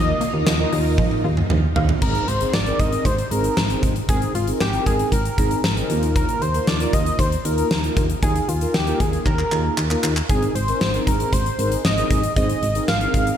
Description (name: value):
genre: synth-pop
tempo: 116 BPM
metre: 4/4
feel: straight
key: unclear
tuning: A4 = 439 Hz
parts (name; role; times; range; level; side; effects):
- octave-doubled lead; melody; 0.0-13.4 s; F4 to F5; -25 LUFS; equal; chorus, ping-pong delay
- mellow synth brass; accompaniment; 0.0-13.4 s; Bb3 to Eb5; -26 LUFS; equal; chorus
- string machine, full ensemble; sustained chords; 0.0-2.0 s; Bb3 to F4; -31 LUFS; left 1 dB; phaser, ensemble chorus
- resonant blip pluck; arpeggios; 0.0-2.0 s; F3 to F5; -28 LUFS; right 2 dB; chorus, phaser, ping-pong delay
- solid FM bass; bass; 0.0-13.3 s; Ab1 to Eb2; -23 LUFS; equal; none
- huge arena drum kit; drums; 0.2-13.4 s; crash cymbal, handclaps, hi-hat, kick drum, snare drum, toms; -22 LUFS; equal; none
room: light reverb, small room reverb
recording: none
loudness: -18 LUFS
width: side -9 dB against mid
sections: 0.0-2.0 A section; 2.0-13.4 B section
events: drum fill 1.0-2.0, 9.3-10.3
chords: 0.0 Ebsus2; 2.0 Abadd9; 5.9 Ebsus2; 10.3 Abadd9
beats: 0.47 0.98 1.50 | 2.02 2.54 3.05 3.57 | 4.09 4.61 5.12 5.64 | 6.16 6.67 7.19 7.71 | 8.23 8.74 9.26 9.78 | 10.29 10.81 11.33 11.85 | 12.36 12.88